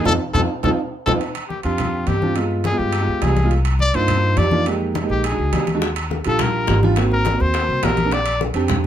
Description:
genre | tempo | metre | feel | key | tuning
Afro-Cuban jazz | 208 BPM | 4/4 | straight | unclear | A4 = 440 Hz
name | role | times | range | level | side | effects
clear trumpet | melody | 0.0-8.4 s | F4 to D5 | -22 LUFS | left 3 dB | none
dark upright piano | accompaniment | 0.0-8.9 s | G3 to G4 | -23 LUFS | right 3 dB | none
upright bass | bass | 0.0-8.9 s | Ab1 to G2 | -21 LUFS | equal | none
bongos | percussion | 0.1-1.1, 5.8-8.8 s | none | -28 LUFS | left 5 dB | none
congas | percussion | 0.1-8.9 s | none | -26 LUFS | left 1 dB | none
timbales | percussion | 0.1-8.8 s | none | -27 LUFS | right 4 dB | none
room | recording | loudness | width
light reverb | close, detailed microphones | -17 LUFS | side -10 dB against mid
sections
0.0-1.2 A section; 1.2-8.9 B section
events
drum fill 0.1-1.2; band accent 0.1-1.2; trumpet solo 1.2-8.9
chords
0.1 F7(no3); 1.2 Fsus2; 2.4 G7b9; 3.5 Cm11; 4.7 Fm11; 5.2 Bb7alt; 5.8 Ebmaj7; 7.0 Ab9; 8.1 Bb6

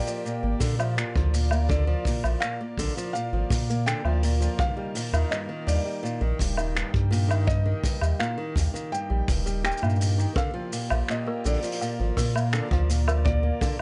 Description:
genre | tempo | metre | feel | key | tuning
folktronica | 83 BPM | 4/4 | straight | Bb major | A4 = 444 Hz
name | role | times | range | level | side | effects
felt-muted upright piano | melody | 0.0-13.8 s | D5 to G5 | -36 LUFS | equal | digital delay
pedal harmonium | sustained chords | 0.0-13.8 s | Bb2 to D5 | -39 LUFS | equal | vintage 12-bit sampler grit
nylon-string guitar | arpeggios | 0.0-13.8 s | G2 to G4 | -34 LUFS | equal | digital delay
soft brush drum kit | drums | 0.1-13.8 s | finger snaps, hi-hat, shaker, woodblock | -34 LUFS | equal | none
warm sub bass | bass | 0.4-13.5 s | Eb1 to Bb2 | -27 LUFS | equal | none
kick drum | drums | 0.6-13.8 s | none | -30 LUFS | equal | none
toy piano | second line | 10.4-13.7 s | Bb4 to F5 | -39 LUFS | equal | digital delay
room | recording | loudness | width
small room reverb | nothing above 10.7 kHz | -26 LUFS | mono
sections
0.0-13.8 A section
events
none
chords
0.0 Bb; 4.6 Eb; 10.4 Bb

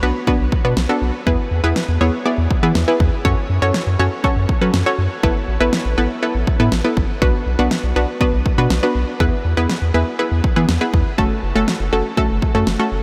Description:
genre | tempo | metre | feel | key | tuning
synth-pop | 121 BPM | 4/4 | straight | B dorian | A4 = 440 Hz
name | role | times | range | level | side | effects
analog pluck | accompaniment | 0.0-13.0 s | A3 to D5 | -21 LUFS | equal | chorus
round analog bass | bass | 0.0-13.0 s | F#1 to F#3 | -21 LUFS | equal | none
pop drum kit | drums | 0.3-12.8 s | kick drum, snare drum | -23 LUFS | equal | overdrive
room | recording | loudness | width
moderate huge ambient reverb, RT60 9.1 s | dreamy mix soaked in reverb | -18 LUFS | mono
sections
0.0-13.0 A section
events
none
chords
0.0 Bm; 1.3 E; 3.2 F#m; 5.2 Asus2; 7.2 Bm; 9.2 E; 11.2 F#m

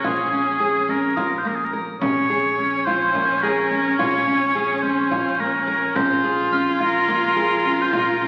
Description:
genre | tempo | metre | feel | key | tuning
contemporary instrumental, chamber music in an uneven meter | 213 BPM (eighths) | 7/8 | straight | Bb minor | A4 = 440 Hz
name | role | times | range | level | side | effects
bright oboe | melody | 0.0-8.3 s | Ab4 to Db5 | -24 LUFS | equal | none
rich viola | second line | 0.0-8.3 s | Db4 to F4 | -27 LUFS | equal | none
nylon-string guitar | arpeggios | 0.0-8.3 s | Bb3 to Bb4 | -26 LUFS | equal | none
upright bass | bass | 0.0-8.3 s | Bb1 | -40 LUFS | equal | none
frame drum | percussion | 0.0-8.2 s | none | -38 LUFS | equal | none
glockenspiel with soft plastic mallets | texture | 1.2-3.3, 6.5-8.3 s | Eb6 to C7 | -32 LUFS | equal | none
room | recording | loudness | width
wet recital hall reverb, RT60 1.6 s | very old 78 rpm record, vinyl crackle | -20 LUFS | mono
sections
0.0-8.3 A section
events
none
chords
0.0 Bbm7

